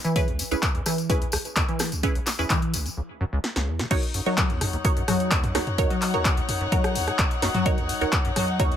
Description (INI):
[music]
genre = acid house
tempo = 128 BPM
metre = 4/4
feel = straight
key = Eb phrygian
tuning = A4 = 440 Hz
[part]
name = acid bass, square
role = riff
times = 0.0-8.8 s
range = Db2 to Gb3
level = -28 LUFS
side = left 1 dB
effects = lush chorus, sidechain pumping, tape echo
[part]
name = filtered dub chord stab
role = stabs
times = 0.0-8.8 s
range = Db4 to Db5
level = -29 LUFS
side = right 3 dB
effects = phaser, vintage 12-bit sampler grit, tape echo
[part]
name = punchy analog drum machine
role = drums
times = 0.0-8.8 s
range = crash cymbal, handclaps, hi-hat, rim click, snare drum, toms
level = -27 LUFS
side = left 1 dB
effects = none
[part]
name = tambourine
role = percussion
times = 0.0-3.0 s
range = none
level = -33 LUFS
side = left 2 dB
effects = none
[part]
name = electronic kick drum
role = drums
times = 0.2-8.7 s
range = none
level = -25 LUFS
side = equal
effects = none
[part]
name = warm studio string section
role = texture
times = 3.9-8.8 s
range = Eb4 to Gb5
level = -30 LUFS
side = left 4 dB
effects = sidechain pumping
[sound]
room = light reverb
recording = none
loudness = -22 LUFS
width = side -10 dB against mid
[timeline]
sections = 0.0-3.9 A section; 3.9-8.8 B section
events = break 3.0-3.9; drum fill 3.4-3.9; drop 3.9-8.8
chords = 0.0 Dbm7; 3.9 Ebm7